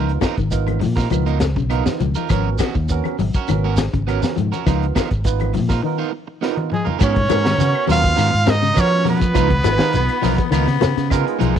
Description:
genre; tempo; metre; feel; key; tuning
afrobeat; 102 BPM; 4/4; straight; G# dorian; A4 = 440 Hz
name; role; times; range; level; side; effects
barky tine electric piano; accompaniment; 0.0-11.4 s; B3 to G#5; -26 LUFS; right 17 dB; lush chorus
clean electric guitar; arpeggios; 0.0-11.6 s; C#3 to F#3; -25 LUFS; left 10 dB; spring reverb
electric guitar at the edge of break-up; stabs; 0.0-11.6 s; B3 to A#4; -26 LUFS; right 12 dB; none
fingered electric bass; bass; 0.0-11.6 s; G#1 to E#3; -20 LUFS; equal; none
crunchy breakbeat drum kit; drums; 0.1-11.6 s; hi-hat, kick drum, snare drum, toms; -22 LUFS; equal; none
claves; percussion; 0.2-11.3 s; none; -36 LUFS; left 17 dB; none
congas; percussion; 0.2-11.6 s; none; -24 LUFS; left 12 dB; none
shekere; percussion; 0.2-11.6 s; none; -27 LUFS; right 2 dB; none
brilliant trumpet; melody; 6.7-10.8 s; G#4 to E#5; -20 LUFS; right 1 dB; none
raspy tenor saxophone; second line; 6.7-10.8 s; G#3 to E#4; -27 LUFS; right 7 dB; none
breathy baritone saxophone; second line; 9.7-11.6 s; G#3 to B3; -24 LUFS; left 12 dB; none
room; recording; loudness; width
studio ambience; dry, close 1970s-style studio recording; -16 LUFS; side -8 dB against mid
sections
0.0-7.0 A section; 7.0-11.6 B section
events
break 5.8-7.0; tine electric piano fill 6.1-7.0; drum fill 6.4-7.0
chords
0.0 C#13; 2.3 G#m11; 4.7 C#13 (rootless); 7.0 G#m11; 9.4 C#13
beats
0.52 1.11 1.71 | 2.30 2.89 3.48 4.08 | 4.67 5.26 5.85 6.44 | 7.02 7.61 8.20 8.78 | 9.37 9.96 10.54 11.12

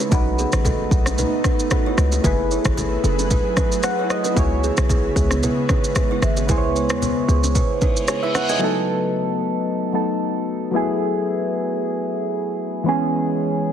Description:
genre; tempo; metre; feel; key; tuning
afrobeats; 113 BPM; 4/4; swing 55% on 16ths; unclear; A4 = 438 Hz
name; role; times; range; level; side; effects
soft electric-piano-like synth keys; accompaniment; 0.0-13.7 s; E3 to G#5; -22 LUFS; left 1 dB; chorus, phaser
ethereal airy pad; sustained chords; 0.0-8.6 s; C#3 to B4; -27 LUFS; equal; ensemble chorus, built-in reverb
kalimba; riff; 0.0-8.6 s; A3 to E5; -27 LUFS; right 5 dB; ping-pong delay
afro-pop drum kit; drums; 0.0-8.6 s; kick drum, rim click, shaker; -22 LUFS; equal; none
bongos and congas; percussion; 0.0-8.6 s; none; -29 LUFS; left 2 dB; none
short 808-style bass; bass; 0.1-7.6 s; F#1 to E2; -21 LUFS; equal; none
reverse cymbal; sound effects; 7.8-8.6 s; none; -29 LUFS; left 4 dB; none
room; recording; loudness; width
light reverb, digital ambience; heavily compressed radio sound; -18 LUFS; side -9 dB against mid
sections
0.0-8.6 A section; 8.6-13.7 B section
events
synth keys fill 3.6-4.4; reverse cymbal 7.8-8.6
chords
0.1 B7; 2.2 F#m11; 4.4 C#m7; 8.6 B7; 10.7 F#m11; 12.9 C#m7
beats
| 0.12 0.65 1.18 1.71 | 2.24 2.77 3.30 3.83 | 4.37 4.90 5.43 5.96 | 6.49 7.02 7.55 8.08 | 8.61 9.14 9.68 10.21 | 10.74 11.27 11.80 12.33 | 12.86 13.39

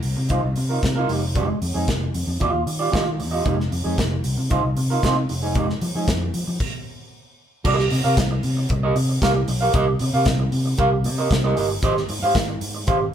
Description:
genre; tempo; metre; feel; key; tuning
disco; 114 BPM; 4/4; straight; C minor; A4 = 441 Hz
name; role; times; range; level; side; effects
fingered electric bass; bass; 0.0-13.1 s; F1 to F3; -23 LUFS; left 1 dB; none
modern studio drum kit; drums; 0.0-13.0 s; crash cymbal, hi-hat, kick drum, snare drum; -24 LUFS; equal; none
electric guitar at the edge of break-up; accompaniment; 0.2-13.0 s; Ab3 to F5; -23 LUFS; right 3 dB; none
room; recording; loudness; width
moderate stone room reverb, RT60 1.0 s; band playing live in one room; -19 LUFS; side -9 dB against mid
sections
0.0-7.6 A section; 7.6-13.1 B section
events
stop 6.6-7.6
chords
0.0 Cm7; 1.1 Fm9; 2.4 Ebmaj9; 3.5 Fm9; 4.2 Cm7; 5.3 Fm9; 6.6 N.C.; 7.6 Cm7; 11.8 Abmaj7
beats
0.30 0.83 | 1.35 1.88 2.40 2.93 | 3.45 3.98 4.50 5.03 | 5.55 6.08 6.60 7.12 | 7.65 8.17 8.70 9.22 | 9.74 10.27 10.79 11.31 | 11.83 12.36 12.88

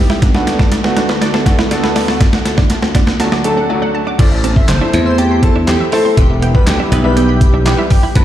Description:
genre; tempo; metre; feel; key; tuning
dance-pop; 121 BPM; 4/4; straight; A dorian; A4 = 440 Hz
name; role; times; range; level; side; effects
clear concert grand piano; accompaniment; 0.0-8.2 s; D3 to C5; -19 LUFS; equal; sidechain pumping, low-pass filter
warm analog pad; sustained chords; 0.0-8.2 s; D2 to B4; -22 LUFS; left 1 dB; chorus, sidechain pumping, low-pass filter
wide unison pluck; arpeggios; 0.0-8.2 s; D4 to D6; -25 LUFS; right 1 dB; sidechain pumping, low-pass filter, ping-pong delay
direct-recorded clean electric guitar; riff; 0.1-8.2 s; A3 to E4; -23 LUFS; right 5 dB; lush chorus, low-pass filter
detuned 8-bit digital drum machine; drums; 0.1-8.2 s; crash cymbal, handclaps, hi-hat, kick drum, snare drum; -13 LUFS; equal; none
airy dreamy lead; melody; 4.2-8.2 s; G4 to E5; -19 LUFS; equal; chorus, sidechain pumping, ping-pong delay
glassy slap bass; bass; 4.2-8.2 s; E1 to E2; -13 LUFS; equal; sidechain pumping
room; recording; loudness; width
light reverb, digital ambience; played on a big sound system in a bare room, large studio reverb; -10 LUFS; side -12 dB against mid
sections
0.0-4.2 A section; 4.2-8.2 B section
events
build-up 0.0-4.2; drum fill 0.0-3.7; break 3.7-4.2; drop 4.2-8.2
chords
0.2 Bm7/D; 2.2 D; 4.2 Am; 6.2 Em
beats
| 0.22 0.72 1.22 1.71 | 2.21 2.70 3.20 3.69 | 4.19 4.69 5.18 5.68 | 6.17 6.67 7.17 7.66 | 8.16

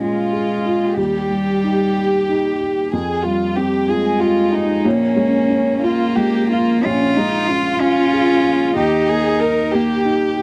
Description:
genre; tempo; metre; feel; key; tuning
neoclassical piano and strings; 62 BPM (dotted quarters); 6/8; rubato; Bb dorian; A4 = 440 Hz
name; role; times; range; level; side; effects
warm chamber violin section; melody; 0.0-10.4 s; Db4 to Bb4; -21 LUFS; equal; none
rich cello; second line; 0.0-10.1 s; G3 to F4; -22 LUFS; equal; none
warm upright piano; accompaniment; 0.0-10.4 s; Bb1 to Ab4; -22 LUFS; equal; none
room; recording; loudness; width
light reverb; dry, close 1970s-style studio recording; -17 LUFS; mono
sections
0.0-10.4 A section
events
none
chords
0.0 Bbm7; 1.0 Eb; 2.9 Fmadd9; 4.9 Bbm7; 8.8 Eb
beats
0.01 | 0.98 1.96 | 2.93 3.89 | 4.85 5.83 | 6.85 7.82 | 8.77 9.73

